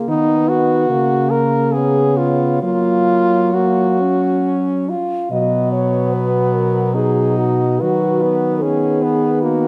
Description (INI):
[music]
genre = classical, lyrical piece for horn quartet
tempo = 65-77 BPM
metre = 3/4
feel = rubato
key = F# major, B major from 5.3 s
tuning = A4 = 440 Hz
[part]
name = mellow French horn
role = melody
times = 0.0-9.7 s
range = F#4 to D#5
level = -24 LUFS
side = equal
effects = none
[part]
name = mellow French horn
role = accompaniment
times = 0.0-9.7 s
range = F#3 to E#4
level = -23 LUFS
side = equal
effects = none
[part]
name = clear French horn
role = second line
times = 0.1-9.7 s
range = A#3 to A#4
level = -21 LUFS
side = equal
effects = none
[part]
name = mellow French horn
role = bass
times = 0.1-9.7 s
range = B2 to F#3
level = -22 LUFS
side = equal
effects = none
[sound]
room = light reverb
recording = close, detailed microphones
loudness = -16 LUFS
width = mono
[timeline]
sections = 0.0-5.3 A section; 5.3-9.7 B section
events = none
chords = 0.1 B/D#; 0.9 F#/C#; 1.7 C#7; 2.6 F#; 5.3 B; 7.8 B/D#